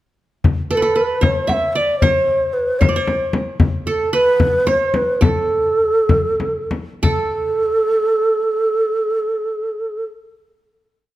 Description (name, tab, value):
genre	Arabic maqam ensemble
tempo	61-76 BPM (dotted quarters)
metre	6/8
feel	straight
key	A maqam rast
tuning	A4 = 440 Hz
part	frame drum	percussion	0.4-7.3 s	none	-18 LUFS	left 2 dB	none
part	breathy mellow low ney	melody	0.7-10.1 s	A4 to F#5	-17 LUFS	right 1 dB	none
part	qanun	second line	0.7-10.0 s	A4 to E5	-23 LUFS	right 3 dB	none
room	moderate recital hall reverb, RT60 1.5 s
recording	none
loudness	-15 LUFS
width	side -15 dB against mid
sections	0.4-7.0 A section; 7.0-11.0 final note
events	slowing down 3.6-7.0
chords	none